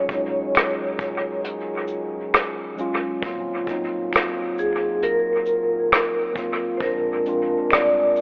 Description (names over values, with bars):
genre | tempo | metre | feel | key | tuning
lo-fi hip hop | 67 BPM | 4/4 | swing 61% on 16ths | Eb dorian | A4 = 440 Hz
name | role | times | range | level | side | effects
vibraphone with medium mallets | melody | 0.0-8.2 s | Ab4 to D5 | -25 LUFS | equal | low-pass filter, dub echo
mellow tine electric piano | accompaniment | 0.0-8.2 s | Gb3 to F4 | -31 LUFS | equal | cassette tape, low-pass filter, dub echo
dark French horn section | sustained chords | 0.0-8.2 s | Eb3 to Ab4 | -34 LUFS | equal | low-pass filter
warm sub bass | bass | 0.0-8.1 s | Eb1 to C2 | -49 LUFS | equal | none
vintage brush drum kit | drums | 0.1-8.2 s | hi-hat, kick drum, rim click, shaker | -26 LUFS | equal | dub echo
finger snap | percussion | 0.5-8.0 s | none | barely audible | none | none
room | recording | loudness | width
light reverb, small room reverb | echo-heavy mix, cassette tape, telephone sound | -23 LUFS | mono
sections
0.0-3.2 A section; 3.2-8.2 B section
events
none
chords
0.0 Ebm11; 3.2 Ebm69; 6.8 Bb9